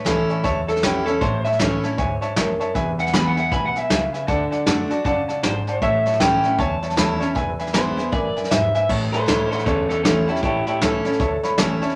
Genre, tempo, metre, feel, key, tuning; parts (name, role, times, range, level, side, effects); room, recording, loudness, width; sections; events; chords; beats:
rockabilly; 156 BPM; 4/4; swing 61% on 8ths; A major; A4 = 440 Hz
electric guitar through a small old amp; melody; 0.0-11.6 s; C#4 to B5; -25 LUFS; equal
picked steel-string acoustic guitar; accompaniment; 0.0-12.0 s; E2 to F#4; -26 LUFS; equal
warm upright piano; accompaniment; 0.1-11.9 s; B4 to B5; -29 LUFS; equal
upright bass; bass; 0.1-11.9 s; E1 to F#2; -34 LUFS; equal
soft brush drum kit; drums; 0.1-11.9 s; crash cymbal, hi-hat, kick drum, snare drum; -26 LUFS; equal
moderate small room reverb, RT60 0.5 s; -21 LUFS; mono
0.0-8.9 A section; 8.9-12.0 B section
clean electric guitar solo 0.0-8.9
0.0 A; 2.8 E; 4.3 D; 5.8 A; 7.4 E; 8.9 A
0.07 0.45 0.83 | 1.22 1.60 1.99 2.37 | 2.75 3.14 3.52 3.91 | 4.29 4.67 5.06 5.44 | 5.83 6.21 6.59 6.98 | 7.36 7.75 8.13 8.51 | 8.90 9.28 9.67 10.05 | 10.44 10.82 11.21 11.59